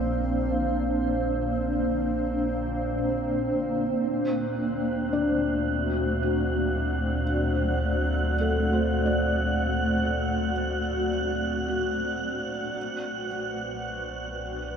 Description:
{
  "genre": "ambient",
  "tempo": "55 BPM",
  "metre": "4/4",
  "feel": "straight",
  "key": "unclear",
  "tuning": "A4 = 440 Hz",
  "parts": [
    { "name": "granular cloud pad", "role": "sustained chords", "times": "0.0-14.8 s", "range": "A3 to F#5", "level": "-27 LUFS", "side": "equal", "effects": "built-in reverb" },
    { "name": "round analog bass", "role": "bass", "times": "0.0-14.8 s", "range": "Bb1 to D2", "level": "-31 LUFS", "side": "equal", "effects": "none" },
    { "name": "organ-like drone", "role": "drone", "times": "0.0-14.8 s", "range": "Bb2 to C4", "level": "-33 LUFS", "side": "right 1 dB", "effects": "ensemble chorus, built-in reverb" },
    { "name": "wind-like tuned noise texture", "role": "texture", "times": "4.4-14.8 s", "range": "F#6", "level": "-33 LUFS", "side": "right 3 dB", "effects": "built-in reverb" },
    { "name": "felt-muted upright piano", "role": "arpeggios", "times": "5.1-14.8 s", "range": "D4 to D5", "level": "-33 LUFS", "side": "left 2 dB", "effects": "ping-pong delay" }
  ],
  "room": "wet cathedral reverb, RT60 6.6 s",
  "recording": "none",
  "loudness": "-24 LUFS",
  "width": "side -7 dB against mid",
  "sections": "0.0-14.8 A section",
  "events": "filter sweep on ambient pad 0.0-14.8; fade-out 9.9-14.8",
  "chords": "0.0 Bbadd9; 4.0 D; 12.8 Bm",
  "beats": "0.76 1.85 2.94 | 4.04 5.13 6.22 7.31 | 8.40 9.49 10.58 11.67 | 12.76 13.85"
}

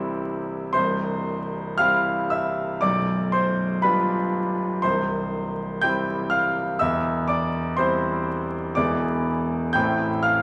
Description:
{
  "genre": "classical, romantic character piece for solo piano",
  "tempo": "60 BPM",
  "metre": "2/4",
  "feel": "rubato",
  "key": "C major",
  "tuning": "A4 = 441 Hz",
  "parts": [
    { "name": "bright concert grand piano", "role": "solo", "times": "0.0-10.4 s", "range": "B0 to G6", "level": "-24 LUFS", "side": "equal", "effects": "none" }
  ],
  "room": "wet recital hall reverb, RT60 1.7 s",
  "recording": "vinyl crackle",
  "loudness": "-24 LUFS",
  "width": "mono",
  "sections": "0.7-10.4 A section",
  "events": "none",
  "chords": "0.0 C; 2.8 G7/B; 4.8 C; 6.8 C/E; 8.8 E7; 9.7 Am7",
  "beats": "| 0.74 1.79 | 2.81 3.83 | 4.84 5.82 | 6.80 7.78 | 8.77 9.74"
}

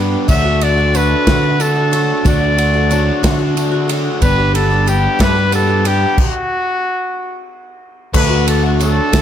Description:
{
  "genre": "folk rock and heartland rock",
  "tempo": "61 BPM (dotted quarters)",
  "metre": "6/8",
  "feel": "straight",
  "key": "D major",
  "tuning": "A4 = 437 Hz",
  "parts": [
    { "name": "picked twelve-string acoustic guitar", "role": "accompaniment", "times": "0.0-9.2 s", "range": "G2 to G4", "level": "-22 LUFS", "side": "left 8 dB", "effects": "none" },
    { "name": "crunchy overdriven guitar", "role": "riff", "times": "0.0-9.2 s", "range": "D3 to B4", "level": "-20 LUFS", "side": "right 3 dB", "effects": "none" },
    { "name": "fingered electric bass", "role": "bass", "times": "0.0-9.2 s", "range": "G1 to D3", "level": "-16 LUFS", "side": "equal", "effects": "none" },
    { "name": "warm trumpet", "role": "melody", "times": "0.3-9.2 s", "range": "F#4 to E5", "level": "-18 LUFS", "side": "left 1 dB", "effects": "slapback echo" },
    { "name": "natural country drum kit", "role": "drums", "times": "0.3-9.2 s", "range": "crash cymbal, kick drum, ride cymbal, snare drum", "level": "-19 LUFS", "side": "equal", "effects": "none" },
    { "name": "tambourine", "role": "percussion", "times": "0.3-9.2 s", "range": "none", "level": "-31 LUFS", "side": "right 11 dB", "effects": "none" }
  ],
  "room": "light reverb, small room ambience",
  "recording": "none",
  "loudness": "-12 LUFS",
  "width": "side -10 dB against mid",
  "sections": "0.0-8.2 A section; 8.2-9.2 A section",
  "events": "stop 6.2-8.2",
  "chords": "0.3 D; 4.2 G; 6.2 N.C.; 8.2 D",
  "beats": "| 0.29 1.27 | 2.26 3.24 | 4.22 5.21 | 6.19 7.17 | 8.15 9.13"
}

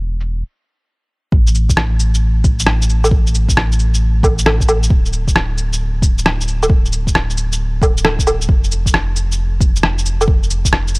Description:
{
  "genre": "future garage",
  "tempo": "134 BPM",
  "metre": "4/4",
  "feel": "swing 66% on 16ths",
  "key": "unclear",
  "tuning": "A4 = 438 Hz",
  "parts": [
    { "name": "warm sub bass", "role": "bass", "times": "0.0-11.0 s", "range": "D1 to A1", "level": "-16 LUFS", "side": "equal", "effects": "tube saturation, sidechain pumping" },
    { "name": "electronic cabasa, shaker, rim click and woodblock", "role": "drums", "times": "0.2-11.0 s", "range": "none", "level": "-17 LUFS", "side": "equal", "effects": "low-pass filter on perc, low-pass filter on snare" },
    { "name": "electronic kick drum", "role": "drums", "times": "1.3-10.7 s", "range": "none", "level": "-14 LUFS", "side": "equal", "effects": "none" }
  ],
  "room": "digital ambience",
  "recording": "dry, gritty hardware recording",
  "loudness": "-12 LUFS",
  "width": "side -29 dB against mid",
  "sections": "0.0-1.3 A section; 1.3-11.0 B section",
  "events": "stop 0.4-1.3",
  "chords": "none",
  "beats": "0.43 0.88 | 1.33 1.77 2.22 2.67 | 3.12 3.56 4.01 4.46 | 4.91 5.36 5.80 6.25 | 6.70 7.15 7.59 8.04 | 8.49 8.94 9.39 9.83 | 10.28 10.73"
}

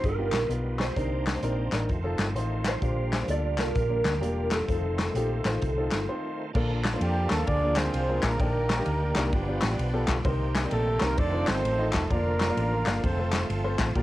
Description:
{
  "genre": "uptempo gospel",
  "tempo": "129 BPM",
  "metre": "4/4",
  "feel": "swing 65% on 8ths",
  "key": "Bb major",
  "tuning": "A4 = 441 Hz",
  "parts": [
    { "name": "mellow electric guitar", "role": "melody", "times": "0.0-6.0 s", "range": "A4 to D5", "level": "-30 LUFS", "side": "right 1 dB", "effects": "ensemble chorus" },
    { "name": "clear upright piano", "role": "accompaniment", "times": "0.0-14.0 s", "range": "G2 to F5", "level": "-33 LUFS", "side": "left 1 dB", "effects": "none" },
    { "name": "bright tonewheel organ", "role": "sustained chords", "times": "0.0-14.0 s", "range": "D3 to A4", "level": "-36 LUFS", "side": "right 3 dB", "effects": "overdrive, chorus vibrato, stopped rotary speaker" },
    { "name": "hollow-body short-scale fingered electric bass", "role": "bass", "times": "0.0-14.0 s", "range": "E1 to F2", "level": "-29 LUFS", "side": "equal", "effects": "none" },
    { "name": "natural country drum kit", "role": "drums", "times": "0.0-14.0 s", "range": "crash cymbal, hi-hat, kick drum, ride cymbal, snare drum", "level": "-31 LUFS", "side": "equal", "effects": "none" },
    { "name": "group handclap", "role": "percussion", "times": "0.3-13.9 s", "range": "none", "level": "-32 LUFS", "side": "left 4 dB", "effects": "none" },
    { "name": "mellow horn section", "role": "melody", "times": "7.0-13.9 s", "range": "G3 to D5", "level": "-30 LUFS", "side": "right 2 dB", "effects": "analog delay" }
  ],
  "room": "little or no reverb",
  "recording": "home recording on cassette",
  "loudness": "-24 LUFS",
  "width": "side -15 dB against mid",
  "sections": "0.0-6.5 A section; 6.5-14.0 B section",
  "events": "break 6.1-6.5",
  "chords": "0.0 G7alt; 1.0 Cm9; 1.9 F7; 2.8 Bb6; 4.7 F7; 6.5 Bbmaj7; 7.5 Bb7/D; 8.4 Ebmaj7/Bb; 9.3 G7; 10.3 Cm7; 11.2 F7; 12.1 Bb/F; 13.0 F",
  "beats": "0.03 0.50 | 0.96 1.43 1.89 2.36 | 2.82 3.29 3.75 4.22 | 4.68 5.15 5.61 6.08 | 6.54 7.01 7.47 7.93 | 8.40 8.86 9.32 9.79 | 10.25 10.71 11.18 11.64 | 12.10 12.57 13.03 13.49 | 13.96"
}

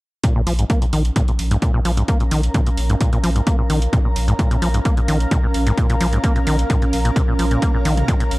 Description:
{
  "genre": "acid house",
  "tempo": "130 BPM",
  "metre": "4/4",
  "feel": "straight",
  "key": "unclear",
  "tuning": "A4 = 440 Hz",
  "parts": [
    { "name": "acid bass, saw", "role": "riff", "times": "0.2-8.2 s", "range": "Ab2 to Bb3", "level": "-21 LUFS", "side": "equal", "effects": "tube saturation, sidechain pumping, tape echo" },
    { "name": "electronic kick drum", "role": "drums", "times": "0.2-8.2 s", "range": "none", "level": "-19 LUFS", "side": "equal", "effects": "overdrive" },
    { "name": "punchy analog drum machine", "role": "drums", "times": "0.2-8.4 s", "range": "hi-hat, toms", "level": "-30 LUFS", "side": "right 1 dB", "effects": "overdrive" },
    { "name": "granular cloud pad", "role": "texture", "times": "1.1-8.4 s", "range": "Db4 to Bb5", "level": "-26 LUFS", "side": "right 1 dB", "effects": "built-in reverb, sidechain pumping" },
    { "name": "saturated sub bass", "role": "bass", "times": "0.5-8.4 s", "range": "Bb1", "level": "-20 LUFS", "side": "equal", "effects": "sidechain pumping" }
  ],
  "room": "little or no reverb",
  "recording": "dry, gritty hardware recording",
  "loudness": "-16 LUFS",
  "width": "side -20 dB against mid",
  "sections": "0.2-8.4 A section",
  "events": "none",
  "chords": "0.2 Bbm",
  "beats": "| 0.24 0.70 1.16 1.62 | 2.08 2.54 3.01 3.47 | 3.93 4.39 4.85 5.31 | 5.78 6.24 6.70 7.16 | 7.62 8.08"
}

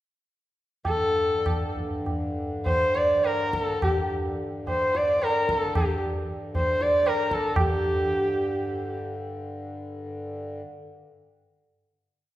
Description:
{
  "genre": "indian classical, Hindustani",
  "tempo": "99-139 BPM",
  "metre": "3/4",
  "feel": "straight",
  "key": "G raga darbari",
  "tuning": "A4 = 440 Hz",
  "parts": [
    { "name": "tabla", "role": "percussion", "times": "0.8-7.7 s", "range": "none", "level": "-29 LUFS", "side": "right 1 dB", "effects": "none" },
    { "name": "dark sarangi", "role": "melody", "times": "0.9-9.0 s", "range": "G4 to D5", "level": "-24 LUFS", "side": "equal", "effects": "none" },
    { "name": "pedal harmonium", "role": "drone", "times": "0.9-10.6 s", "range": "G2 to D3", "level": "-34 LUFS", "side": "left 1 dB", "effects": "none" }
  ],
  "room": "wet recital hall reverb, RT60 1.7 s",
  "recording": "recorded in a church or concert hall",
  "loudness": "-23 LUFS",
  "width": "side -14 dB against mid",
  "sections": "0.9-7.6 theme; 7.6-10.3 final chord",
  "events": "speeding up 0.9-10.3",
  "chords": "none",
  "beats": "| 0.86 1.47 2.07 | 2.66 3.25 3.82 | 4.39 4.95 5.49 | 6.03 6.55 7.06 | 7.57 8.06 8.54 | 9.00 9.46 9.91"
}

